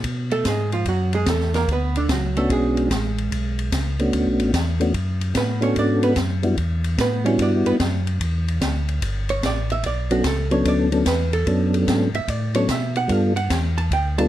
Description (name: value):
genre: soul jazz organ trio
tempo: 147 BPM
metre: 4/4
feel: swing 66% on 8ths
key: B dorian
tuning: A4 = 440 Hz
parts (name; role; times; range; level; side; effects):
- mellow tonewheel organ; bass; 0.0-14.3 s; G1 to B2; -23 LUFS; equal; overdrive, chorus vibrato, slow rotary speaker
- open jazz drum kit; drums; 0.0-14.2 s; hi-hat, kick drum, ride cymbal, snare drum; -27 LUFS; left 1 dB; none
- archtop guitar, miked and amplified; accompaniment; 0.3-14.3 s; D3 to A5; -24 LUFS; right 4 dB; none
- percussive tonewheel organ; melody; 2.4-14.3 s; F#3 to A4; -20 LUFS; equal; slow rotary speaker, chorus vibrato
room: light reverb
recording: dark, warm production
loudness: -19 LUFS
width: side -13 dB against mid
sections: 0.0-14.3 A section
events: hollow-body jazz guitar solo 0.0-14.3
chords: 0.0 Bm7; 6.6 Em7; 9.8 Bm7; 13.1 G7